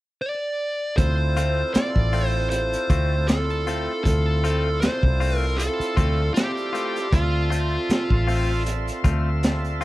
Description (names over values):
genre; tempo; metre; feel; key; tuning
straight-eighth soul blues; 78 BPM; 4/4; swing 55% on 16ths; D minor; A4 = 440 Hz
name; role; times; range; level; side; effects
dark smooth lead guitar; melody; 0.2-8.6 s; F4 to D5; -26 LUFS; equal; overdrive, slapback echo
tonewheel organ; accompaniment; 1.0-9.8 s; C4 to E5; -30 LUFS; right 3 dB; overdrive, slow rotary speaker
rich chamber string section; sustained chords; 1.0-9.8 s; D5 to C6; -38 LUFS; left 3 dB; none
vintage muted fingered electric bass; bass; 1.0-9.8 s; A1 to D2; -23 LUFS; equal; none
crunchy breakbeat drum kit; drums; 1.0-9.8 s; hi-hat, kick drum, snare drum; -24 LUFS; equal; none
direct-recorded clean electric guitar; stabs; 1.4-9.8 s; A3 to F4; -30 LUFS; left 6 dB; none
room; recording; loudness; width
small room ambience; none; -20 LUFS; side -17 dB against mid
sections
1.0-9.8 A section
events
none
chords
0.0 N.C.; 1.0 Dm7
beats
0.21 | 0.98 1.75 2.51 3.28 | 4.05 4.82 5.59 6.35 | 7.12 7.89 8.66 9.42